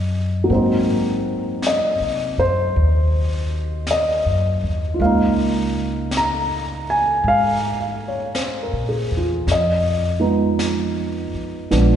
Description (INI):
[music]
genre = jazz ballad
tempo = 54 BPM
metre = 4/4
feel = swing 66% on 8ths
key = unclear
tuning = A4 = 440 Hz
[part]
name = dark baby grand piano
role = accompaniment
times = 0.0-12.0 s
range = F3 to Bb5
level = -19 LUFS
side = equal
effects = none
[part]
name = upright bass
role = bass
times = 0.0-12.0 s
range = Bb1 to C3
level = -22 LUFS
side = equal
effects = none
[part]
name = jazz brush drum kit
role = drums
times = 0.5-12.0 s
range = brushed snare drum, hi-hat, snare drum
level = -31 LUFS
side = left 1 dB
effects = none
[sound]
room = wet concert hall reverb, RT60 2.6 s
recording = recorded in a church or concert hall, nothing above 10.5 kHz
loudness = -18 LUFS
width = side -9 dB against mid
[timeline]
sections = 0.0-12.0 A section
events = none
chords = 0.5 Ab7; 5.0 Db6; 9.5 Fm7b5